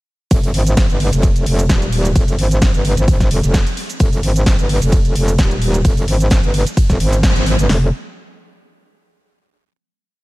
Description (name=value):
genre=bass house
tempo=130 BPM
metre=4/4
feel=swing 54% on 16ths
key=unclear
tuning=A4 = 441 Hz
part: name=metallic wobble bass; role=bass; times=0.3-7.9 s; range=Eb1 to Ab1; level=-15 LUFS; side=equal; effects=chorus, sidechain pumping
part: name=house drum kit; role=drums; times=0.3-7.8 s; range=hi-hat, kick drum, snare drum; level=-14 LUFS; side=equal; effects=none
part: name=house drum kit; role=drums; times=0.3-7.7 s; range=cabasa, hi-hat, ride cymbal, snare drum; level=-22 LUFS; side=equal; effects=none
part: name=huge arena drum kit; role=drums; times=0.3-7.6 s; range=hi-hat, snare drum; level=-33 LUFS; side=right 2 dB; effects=none
room=little or no reverb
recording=none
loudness=-12 LUFS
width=side -20 dB against mid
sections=0.3-7.7 drop; 7.7-9.5 final chord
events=drop 0.3-7.7; band accent 7.2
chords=none